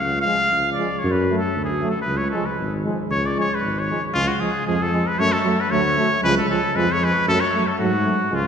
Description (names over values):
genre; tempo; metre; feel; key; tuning
balkan folk, Balkan brass band; 115 BPM; 2/4; straight; C# phrygian dominant; A4 = 439 Hz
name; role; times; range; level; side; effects
cornet with straight mute; melody; 0.0-8.5 s; E#4 to E#5; -21 LUFS; left 1 dB; none
mellow tuba; bass; 0.0-8.5 s; G#1 to G#2; -24 LUFS; equal; none
mellow euphonium; accompaniment; 0.2-8.4 s; E#3 to F#3; -27 LUFS; right 4 dB; none
bright trombone; accompaniment; 0.3-8.4 s; G#3 to A3; -28 LUFS; left 2 dB; none
room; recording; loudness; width
wet concert hall reverb, RT60 2.5 s; recorded in a church or concert hall; -18 LUFS; side -7 dB against mid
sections
0.0-4.2 A section; 4.2-8.5 B section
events
cornet solo 0.0-4.2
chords
0.0 C#; 1.0 F#m; 2.1 C#; 5.2 F#m; 6.2 C#; 7.3 F#m